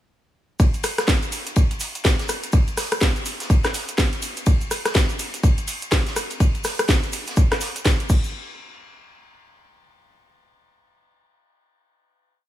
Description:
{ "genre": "house", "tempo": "124 BPM", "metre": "4/4", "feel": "swing 60% on 16ths", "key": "none", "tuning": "none", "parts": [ { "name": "crisp fusion drum kit", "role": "drums", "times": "0.6-8.0 s", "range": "hi-hat, ride cymbal, snare drum", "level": "-32 LUFS", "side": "left 1 dB", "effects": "sidechain pumping on cymbals, high-pass filter on cymbals, sidechain pumping on hats, high-pass filter on hats, high-pass filter on snare, high-pass filter on room" }, { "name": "electronic kick drum", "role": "drums", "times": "0.6-8.2 s", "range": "none", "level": "-18 LUFS", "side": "equal", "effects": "none" }, { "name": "egg shaker", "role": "percussion", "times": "0.6-8.3 s", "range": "none", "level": "-35 LUFS", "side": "right 4 dB", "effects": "none" }, { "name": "house drum kit", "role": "drums", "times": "0.7-8.2 s", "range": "crash cymbal, hi-hat, rim click, snare drum", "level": "-24 LUFS", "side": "equal", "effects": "none" } ], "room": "little or no reverb", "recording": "small room ambience", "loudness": "-19 LUFS", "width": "side -13 dB against mid", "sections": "0.6-8.3 drop; 8.3-10.3 final hit", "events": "drop 0.6-8.3", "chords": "none" }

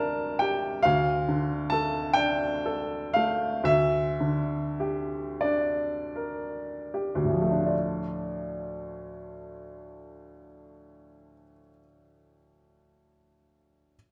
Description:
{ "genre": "classical, romantic nocturne for solo piano", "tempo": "23-47 BPM (dotted quarters)", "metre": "6/8", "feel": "rubato", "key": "D minor", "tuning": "A4 = 442 Hz", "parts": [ { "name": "clear baby grand piano", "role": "solo", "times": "0.0-14.0 s", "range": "D2 to A5", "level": "-28 LUFS", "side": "equal", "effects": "none" } ], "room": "wet recital hall reverb, RT60 1.7 s", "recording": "none", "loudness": "-28 LUFS", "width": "mono", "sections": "0.0-7.7 A section; 7.7-11.8 B section", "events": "slowing down 0.0-7.7", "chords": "0.0 Gm/D; 0.8 Dm; 3.7 Gm/D; 7.7 Dm" }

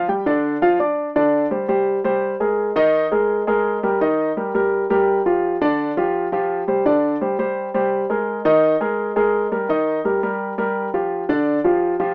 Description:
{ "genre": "latin", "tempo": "168 BPM", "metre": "4/4", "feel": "straight", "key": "C minor", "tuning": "A4 = 441 Hz", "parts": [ { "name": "warm concert grand piano", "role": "solo", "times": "0.0-12.1 s", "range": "D3 to D6", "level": "-20 LUFS", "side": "equal", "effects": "none" } ], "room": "light reverb", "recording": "rough home demo mix, small speaker sound", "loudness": "-20 LUFS", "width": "mono", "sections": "0.0-1.2 A section; 1.2-12.1 B section", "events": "none", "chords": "0.0 G5; 1.2 Csus2; 2.6 Bb7sus4; 4.0 Eb; 5.4 G5; 6.9 Csus2; 8.3 Bb7sus4; 9.7 Eb; 11.1 G5" }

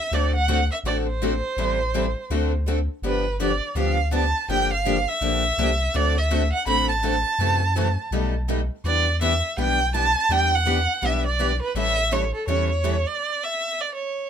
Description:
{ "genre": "acoustic string swing (jazz manouche)", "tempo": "165 BPM", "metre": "4/4", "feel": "swing 61% on 8ths", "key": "D mixolydian", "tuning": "A4 = 440 Hz", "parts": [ { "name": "warm violin", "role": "melody", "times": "0.0-14.3 s", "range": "A4 to B5", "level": "-23 LUFS", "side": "right 2 dB", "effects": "none" }, { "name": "picked steel-string acoustic guitar", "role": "accompaniment", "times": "0.1-13.0 s", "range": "B2 to A4", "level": "-28 LUFS", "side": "left 7 dB", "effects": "none" }, { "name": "picked steel-string acoustic guitar", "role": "accompaniment", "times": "0.1-13.0 s", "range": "B2 to B4", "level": "-31 LUFS", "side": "right 8 dB", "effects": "none" }, { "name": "pure sine sub bass", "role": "bass", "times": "0.1-13.1 s", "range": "G1 to F#2", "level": "-24 LUFS", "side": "equal", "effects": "none" } ], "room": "light reverb", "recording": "minimal, uncompressed stereo recording", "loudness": "-20 LUFS", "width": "side -8 dB against mid", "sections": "0.0-14.3 A section", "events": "stop 13.2-14.3", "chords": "0.1 D7; 1.6 Am7; 2.3 D7; 3.0 G7; 4.5 Gm7; 5.9 D7; 7.4 F#m7b5; 8.1 Baug7; 8.8 Em7; 11.8 A7; 13.2 N.C." }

